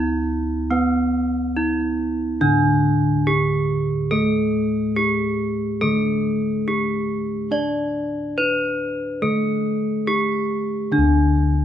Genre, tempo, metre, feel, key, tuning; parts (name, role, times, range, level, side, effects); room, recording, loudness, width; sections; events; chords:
Javanese gamelan; 70 BPM; 4/4; straight; D pelog barang; A4 = 440 Hz
gamelan-type bronze metallophone; melody; 0.0-11.6 s; B3+20c to D5; -22 LUFS; equal
gamelan-type bronze metallophone; accompaniment; 0.0-11.6 s; D3 to D4; -23 LUFS; equal
gamelan-type bossed gongs; bass; 0.0-11.6 s; D2 to D5; -26 LUFS; left 1 dB
moderate recital hall reverb, RT60 1.6 s; minimal, uncompressed stereo recording; -18 LUFS; side -10 dB against mid
0.0-11.6 A section